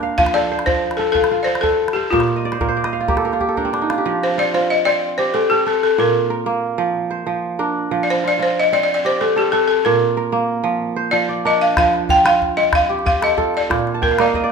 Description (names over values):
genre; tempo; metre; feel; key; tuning
west african traditional, West African string and xylophone music; 124 BPM (dotted quarters); 12/8; straight; F mixolydian; A4 = 440 Hz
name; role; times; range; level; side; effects
kora; arpeggios; 0.0-14.5 s; Bb2 to A5; -20 LUFS; right 4 dB; none
balafon; melody; 0.2-14.5 s; F4 to G5; -16 LUFS; left 2 dB; none
calabash; percussion; 0.2-4.0, 11.8-14.4 s; none; -24 LUFS; left 2 dB; none
room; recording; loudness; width
moderate recital hall reverb, RT60 1.6 s; minimal, uncompressed stereo recording; -15 LUFS; side -5 dB against mid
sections
0.0-4.1 A section; 4.1-14.5 B section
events
kora fill 2.4-4.1, 13.9-14.5; drum fill 3.4-4.1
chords
0.2 F; 2.1 Bb; 4.1 F; 6.0 Bb; 7.9 F; 9.8 Bb; 11.8 F; 13.7 Bb